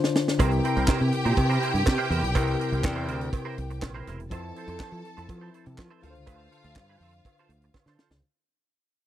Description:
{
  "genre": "disco",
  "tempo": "122 BPM",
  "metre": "4/4",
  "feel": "straight",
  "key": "D minor",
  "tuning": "A4 = 439 Hz",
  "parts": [
    { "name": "mellow tine electric piano", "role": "accompaniment", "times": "0.0-8.2 s", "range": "C3 to C5", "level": "-30 LUFS", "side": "left 4 dB", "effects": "lush chorus" },
    { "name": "tight funk drum kit", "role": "drums", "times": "0.0-8.2 s", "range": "handclaps, hi-hat, kick drum, snare drum", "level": "-25 LUFS", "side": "equal", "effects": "none" },
    { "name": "clear studio string section", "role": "second line", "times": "0.4-7.9 s", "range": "F4 to A5", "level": "-32 LUFS", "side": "equal", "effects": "none" },
    { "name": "clean electric guitar", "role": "accompaniment", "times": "0.4-8.2 s", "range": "E4 to C5", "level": "-34 LUFS", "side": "right 7 dB", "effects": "ensemble chorus" },
    { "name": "modern bright fingered electric bass", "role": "bass", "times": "0.4-8.2 s", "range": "E1 to F3", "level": "-28 LUFS", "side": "right 1 dB", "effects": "none" },
    { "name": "cowbell", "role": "percussion", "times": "0.4-7.9 s", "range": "none", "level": "-36 LUFS", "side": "right 9 dB", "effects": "none" }
  ],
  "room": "studio reverb",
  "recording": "dry, close 1970s-style studio recording",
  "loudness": "-23 LUFS",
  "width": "side -12 dB against mid",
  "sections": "0.0-8.2 A section",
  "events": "fade-out 0.0-8.2; drum fill 0.0-0.4, 7.7-8.2",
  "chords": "0.4 C7; 4.3 Fmaj7; 6.0 Dm7",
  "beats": "| 0.40 0.89 1.38 1.86 | 2.35 2.84 3.33 3.82 | 4.31 4.80 5.29 5.78 | 6.27 6.76 7.25 7.74"
}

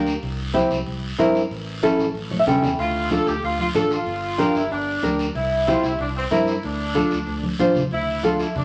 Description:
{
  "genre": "latin, cumbia",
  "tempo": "187 BPM",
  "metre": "4/4",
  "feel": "straight",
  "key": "D minor",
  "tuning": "A4 = 438 Hz",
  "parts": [
    { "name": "mellow saxophone section", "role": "melody", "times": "0.0, 2.8-8.6 s", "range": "C4 to A4", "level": "-27 LUFS", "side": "equal", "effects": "none" },
    { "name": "nylon-string guitar", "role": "accompaniment", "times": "0.0-8.5 s", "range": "C4 to G5", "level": "-23 LUFS", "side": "equal", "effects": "none" },
    { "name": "fingered electric bass", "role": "bass", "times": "0.0-8.6 s", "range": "G1 to A2", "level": "-32 LUFS", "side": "equal", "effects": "none" },
    { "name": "guiro", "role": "percussion", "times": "0.1-8.6 s", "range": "none", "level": "-37 LUFS", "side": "equal", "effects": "none" },
    { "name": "congas", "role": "percussion", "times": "0.6-8.6 s", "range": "none", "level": "-32 LUFS", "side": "equal", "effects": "none" }
  ],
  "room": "moderate large studio reverb, RT60 1.0 s",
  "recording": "none",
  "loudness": "-22 LUFS",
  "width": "mono",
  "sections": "0.0-7.9 A section",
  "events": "nylon-string guitar fill 2.1-2.8; drum fill 2.3-2.8, 7.4-7.9",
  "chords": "0.2 C; 1.5 A7; 2.8 Dm; 4.1 Gm; 5.4 C; 6.6 Dm",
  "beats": "| 0.22 0.54 0.86 1.19 | 1.51 1.83 2.15 2.47 | 2.79 3.11 3.43 3.75 | 4.07 4.39 4.71 5.03 | 5.35 5.67 5.99 6.31 | 6.63 6.95 7.27 7.59 | 7.91 8.23 8.55"
}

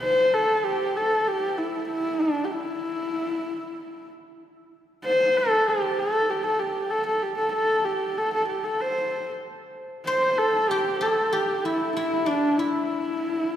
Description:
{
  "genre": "mongolian traditional, Mongolian folk",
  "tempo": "95 BPM",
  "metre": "4/4",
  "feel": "straight",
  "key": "unclear",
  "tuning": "A4 = 437 Hz",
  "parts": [
    { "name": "dark horsehead fiddle", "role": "melody", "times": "0.0-13.6 s", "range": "D4 to C5", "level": "-23 LUFS", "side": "equal", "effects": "none" },
    { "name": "guzheng", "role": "second line", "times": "10.1-13.6 s", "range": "D4 to C5", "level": "-27 LUFS", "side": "left 2 dB", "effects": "none" }
  ],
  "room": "wet church reverb, RT60 3.6 s",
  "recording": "recorded in a church or concert hall",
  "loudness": "-22 LUFS",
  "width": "side -10 dB against mid",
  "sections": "0.0-13.6 A section",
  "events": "none",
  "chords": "none",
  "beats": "0.01 0.64 1.26 | 1.89 2.52 3.15 3.77 | 4.40 5.03 5.66 6.29 | 6.92 7.54 8.18 8.80 | 9.44 10.07 10.70 11.33 | 11.96 12.59 13.22"
}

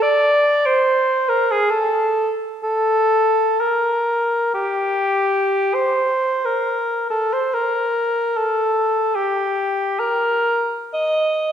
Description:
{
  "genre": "classical, free, expressive piece for unaccompanied cor anglais",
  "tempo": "40-77 BPM",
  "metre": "3/4",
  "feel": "rubato",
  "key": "unclear",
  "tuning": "A4 = 440 Hz",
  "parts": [
    { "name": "mellow cor anglais", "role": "solo", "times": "0.0-11.5 s", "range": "G4 to Eb5", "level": "-16 LUFS", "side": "equal", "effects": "none" }
  ],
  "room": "wet concert hall reverb, RT60 1.8 s",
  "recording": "heard from further back in the room",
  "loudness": "-17 LUFS",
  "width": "side -9 dB against mid",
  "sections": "0.0-5.7 A section; 5.7-11.5 A section",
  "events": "none",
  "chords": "none",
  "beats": "| 0.02 0.87 1.71 | 2.64 3.61 4.55 | 5.75 6.67 7.53 | 8.36 9.16 9.99 | 10.91"
}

